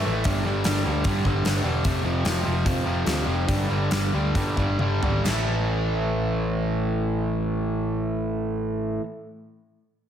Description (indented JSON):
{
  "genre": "hard rock",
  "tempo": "128-151 BPM",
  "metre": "4/4",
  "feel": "straight",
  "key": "A minor",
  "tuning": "A4 = 440 Hz",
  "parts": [
    { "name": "overdriven semi-hollow guitar", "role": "riff", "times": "0.0-9.1 s", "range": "F2 to A3", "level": "-25 LUFS", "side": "right 1 dB", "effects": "none" },
    { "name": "picked electric bass", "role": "bass", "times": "0.0-9.0 s", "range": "E1 to G2", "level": "-27 LUFS", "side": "equal", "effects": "none" },
    { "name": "gated 80s drum kit", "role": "drums", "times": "0.2-5.4 s", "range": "crash cymbal, hi-hat, kick drum, snare drum, toms", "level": "-27 LUFS", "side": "equal", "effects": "none" }
  ],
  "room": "moderate recital hall reverb, RT60 1.4 s, studio reverb",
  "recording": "big arena sound",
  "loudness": "-22 LUFS",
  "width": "side -9 dB against mid",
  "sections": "0.0-5.2 A section; 5.2-9.0 B section",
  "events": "slowing down 1.8-5.2; drum fill 4.8-5.2",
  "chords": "0.3 G5; 1.8 F5; 3.5 G5; 5.2 A5",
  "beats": "| 0.25 0.65 1.05 1.45 | 1.85 2.25 2.65 3.06 | 3.48 3.90 4.34 4.79 | 5.25 5.72 6.19 6.66 | 7.13 7.60 8.07 8.54"
}